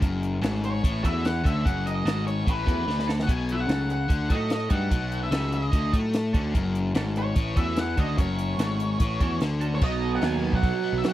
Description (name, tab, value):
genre	indie rock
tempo	147 BPM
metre	4/4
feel	straight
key	F# dorian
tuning	A4 = 441 Hz
part	biting overdriven guitar	riff	0.0-11.1 s	F#2 to F#4	-30 LUFS	left 4 dB	none
part	overdriven semi-hollow guitar	riff	0.0-11.1 s	B2 to A4	-32 LUFS	right 8 dB	lush chorus, slapback echo
part	fuzz picked electric bass	bass	0.0-11.0 s	F#1 to A2	-28 LUFS	equal	overdrive
part	compact cocktail drum kit	drums	0.0-11.1 s	crash cymbal, hi-hat, kick drum, snare drum	-25 LUFS	equal	none
part	octave-fuzz lead guitar	melody	0.6-11.1 s	B4 to G#5	-31 LUFS	equal	distortion, slapback echo
room	little or no reverb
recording	dry, close 1970s-style studio recording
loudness	-23 LUFS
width	side -14 dB against mid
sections	0.0-9.8 A section; 9.8-11.1 B section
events	drum fill 2.9-3.3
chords	0.0 F#m; 3.3 B7; 6.3 F#m; 9.8 B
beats	| 0.01 0.42 0.83 1.24 | 1.65 2.05 2.46 2.87 | 3.28 3.69 4.10 4.51 | 4.91 5.32 5.73 6.14 | 6.55 6.96 7.37 7.77 | 8.18 8.59 9.00 9.40 | 9.81 10.22 10.63 11.03